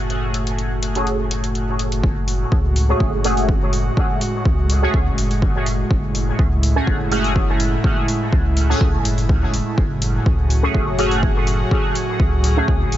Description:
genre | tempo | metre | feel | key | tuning
dub techno | 124 BPM | 4/4 | straight | F# minor | A4 = 440 Hz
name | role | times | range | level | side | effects
airy breathy pad | sustained chords | 0.0-13.0 s | A2 to F#4 | -24 LUFS | right 1 dB | chorus, sidechain pumping
warm sub bass | bass | 0.0-13.0 s | F#1 to C#2 | -21 LUFS | equal | sidechain pumping
drifting glass-harmonics texture | texture | 0.0-2.0, 10.1-13.0 s | G#4 to A4 | -34 LUFS | left 3 dB | chorus, built-in reverb, sidechain pumping
electronic hi-hat | drums | 0.1-13.0 s | none | -28 LUFS | left 2 dB | overdrive, studio reverb
resonant sweep polysynth | stabs | 1.0-12.7 s | A3 to G#4 | -23 LUFS | right 1 dB | chorus, phaser, sidechain pumping, dub echo
electronic kick drum | drums | 2.0-12.8 s | none | -20 LUFS | equal | overdrive, studio reverb
room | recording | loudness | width
little or no reverb | nothing above 7.8 kHz | -16 LUFS | side -13 dB against mid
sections
0.0-2.0 A section; 2.0-13.0 B section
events
none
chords
0.0 F#m; 2.0 F#madd9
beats
| 0.10 0.58 1.07 1.55 | 2.04 2.52 3.00 3.49 | 3.97 4.46 4.94 5.42 | 5.91 6.39 6.87 7.36 | 7.84 8.33 8.81 9.29 | 9.78 10.26 10.74 11.23 | 11.71 12.20 12.68

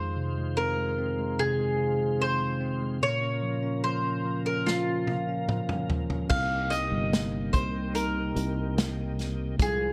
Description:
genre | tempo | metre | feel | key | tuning
pop ballad | 73 BPM | 4/4 | straight | unclear | A4 = 441 Hz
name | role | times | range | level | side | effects
mandolin | melody | 0.0-9.9 s | F4 to F5 | -32 LUFS | equal | none
bell-like tine electric piano | accompaniment | 0.0-9.9 s | F2 to Eb4 | -34 LUFS | equal | none
tonewheel organ | sustained chords | 0.0-9.9 s | C3 to C5 | -38 LUFS | equal | chorus vibrato, slow rotary speaker
natural country drum kit | drums | 4.7-9.8 s | crash cymbal, hi-hat, kick drum, snare drum, toms | -32 LUFS | equal | none
sustaining fretless electric bass | bass | 6.3-9.9 s | G1 to C2 | -34 LUFS | equal | lush chorus
room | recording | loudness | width
light reverb | dark, warm production | -28 LUFS | mono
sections
0.0-6.3 A section; 6.3-9.9 B section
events
drum fill 4.7-6.3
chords
0.0 Fm7; 3.0 Bbm; 6.3 Cm7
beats
0.56 1.38 2.20 | 3.02 3.84 4.67 5.49 | 6.31 7.13 7.95 8.77 | 9.60

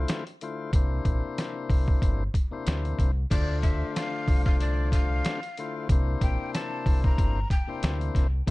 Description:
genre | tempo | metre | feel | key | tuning
hip hop, boom-bap hip-hop | 93 BPM | 4/4 | swing 55% on 16ths | unclear | A4 = 442 Hz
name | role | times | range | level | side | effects
tonewheel organ | accompaniment | 0.0-8.5 s | C3 to C5 | -33 LUFS | left 4 dB | overdrive, high-pass filter, low-pass filter
deep dub fingered electric bass | bass | 0.0-8.5 s | G1 to D2 | -27 LUFS | equal | none
trip hop sampler-style drum kit | drums | 0.1-8.5 s | crash cymbal, hi-hat, kick drum, snare drum | -25 LUFS | equal | none
breathy jazz flute | melody | 3.3-8.0 s | D5 to Bb5 | -35 LUFS | left 1 dB | high-pass filter, low-pass filter, digital delay
room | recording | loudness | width
little or no reverb | dark, warm production | -24 LUFS | side -20 dB against mid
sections
0.0-3.3 A section; 3.3-8.5 B section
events
none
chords
0.0 Dm7; 0.7 C7; 3.3 Dm7; 5.9 C7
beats
0.09 | 0.73 1.38 2.02 2.67 | 3.31 3.96 4.60 5.25 | 5.89 6.54 7.18 7.83 | 8.47

